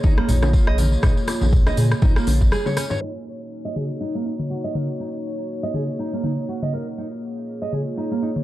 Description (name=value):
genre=afro house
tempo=121 BPM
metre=4/4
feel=swing 56% on 16ths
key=Eb minor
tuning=A4 = 440 Hz
part: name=dark analog pad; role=sustained chords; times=0.0-8.4 s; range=Bb3 to Db5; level=-29 LUFS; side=equal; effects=chorus, sidechain pumping
part: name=nylon-string guitar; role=arpeggios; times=0.0-8.3 s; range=Bb3 to Eb5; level=-28 LUFS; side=right 2 dB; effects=sidechain pumping, low-pass filter, dub echo
part: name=round analog bass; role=bass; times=0.0-2.5 s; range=Bb1 to Bb2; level=-20 LUFS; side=equal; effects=sidechain pumping
part: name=electronic kick drum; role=drums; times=0.0-2.5 s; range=none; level=-18 LUFS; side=equal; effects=none
part: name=congas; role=percussion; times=0.0-3.0 s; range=none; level=-28 LUFS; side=right 1 dB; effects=none
part: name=tambourine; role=percussion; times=0.0-3.0 s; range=none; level=-36 LUFS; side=left 2 dB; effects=none
part: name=afro-pop drum kit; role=drums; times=0.2-8.4 s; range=crash cymbal, hi-hat, rim click, toms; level=-26 LUFS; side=left 1 dB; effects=none
part: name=bongos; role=percussion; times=0.2-3.0 s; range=none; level=-33 LUFS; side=left 3 dB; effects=none
room=light reverb, small room reverb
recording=dark, warm production, low-pass filter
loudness=-19 LUFS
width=side -15 dB against mid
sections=0.0-3.0 A section; 3.0-8.4 B section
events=break 2.5-3.0; drum fill 2.5-3.0; filter sweep on nylon-string guitar 3.0-8.4; filter sweep 3.0-8.4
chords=0.0 Bbm7; 3.0 Ebm7; 7.0 Bbm7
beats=0.04 0.54 | 1.03 1.53 2.02 2.52 | 3.02 3.51 4.01 4.50 | 5.00 5.50 5.99 6.49 | 6.98 7.48 7.97